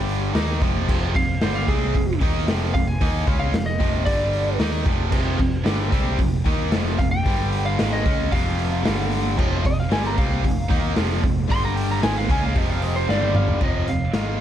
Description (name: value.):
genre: hard rock.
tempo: 113 BPM.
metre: 4/4.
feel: straight.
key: F minor.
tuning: A4 = 441 Hz.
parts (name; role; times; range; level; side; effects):
overdriven electric guitar; riff; 0.0-14.4 s; F2 to Eb4; -29 LUFS; left 13 dB; none.
tight distorted guitar; riff; 0.0-14.4 s; F2 to Eb4; -28 LUFS; right 13 dB; distortion.
picked electric bass; bass; 0.0-14.4 s; F1 to Eb2; -25 LUFS; equal; none.
raw garage drum kit; drums; 0.1-14.3 s; crash cymbal, hi-hat, kick drum, snare drum, toms; -23 LUFS; equal; none.
lightly driven lead guitar; melody; 1.2-14.4 s; Ab4 to C6; -28 LUFS; equal; none.
sludgy distorted guitar; riff; 5.1-13.6 s; F2 to Eb4; -30 LUFS; equal; overdrive.
room: small room reverb.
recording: none.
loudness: -19 LUFS.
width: side -10 dB against mid.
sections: 0.0-13.6 A section.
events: lead electric guitar solo 0.0-13.6; drum fill 13.1-13.6.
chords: 0.3 Fm; 4.1 G5; 4.6 F5; 7.3 G5; 7.8 Fm; 8.9 G5; 9.4 F5; 11.5 G5; 12.0 Fm; 13.1 G5; 13.6 Fm.